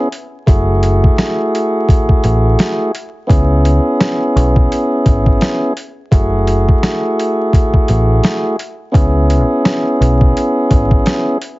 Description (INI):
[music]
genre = hip hop, boom-bap hip-hop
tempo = 85 BPM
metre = 4/4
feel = swing 59% on 16ths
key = C# minor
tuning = A4 = 442 Hz
[part]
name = tonewheel organ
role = accompaniment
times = 0.0-11.4 s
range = A3 to G#4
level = -15 LUFS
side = equal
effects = stopped rotary speaker, cassette tape, high-pass filter, low-pass filter, plate reverb
[part]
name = boom bap sampler-style drum kit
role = drums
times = 0.1-11.6 s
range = hi-hat, kick drum, snare drum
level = -13 LUFS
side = equal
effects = none
[part]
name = deep dub picked electric bass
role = bass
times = 0.5-11.0 s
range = F#1 to C#2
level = -13 LUFS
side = equal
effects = none
[sound]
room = light reverb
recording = heavily compressed radio sound, multiband compression, vinyl crackle, nothing above 7.6 kHz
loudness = -11 LUFS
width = side -20 dB against mid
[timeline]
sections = 0.0-11.6 A section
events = none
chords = 0.5 F#m9; 3.3 C#m7; 6.1 F#m9; 8.9 C#m7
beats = | 0.47 1.18 1.89 2.59 | 3.30 4.00 4.71 5.42 | 6.12 6.83 7.53 8.24 | 8.94 9.65 10.36 11.06